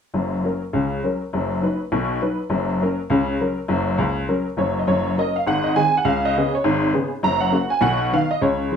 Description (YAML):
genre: jazz, stride piano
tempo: 203 BPM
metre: 4/4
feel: swing 59% on 8ths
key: F# major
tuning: A4 = 439 Hz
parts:
  - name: honky-tonk upright piano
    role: solo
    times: 0.1-8.8 s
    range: F#1 to A#5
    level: -18 LUFS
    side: equal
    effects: none
room: moderate studio reverb, RT60 0.6 s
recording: none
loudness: -18 LUFS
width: side -7 dB against mid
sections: 0.1-4.9 A section; 4.9-8.8 B section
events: none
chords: 0.1 F#; 1.3 B/F#; 2.5 F#; 5.5 G#; 6.1 C#5; 7.2 F#; 7.8 B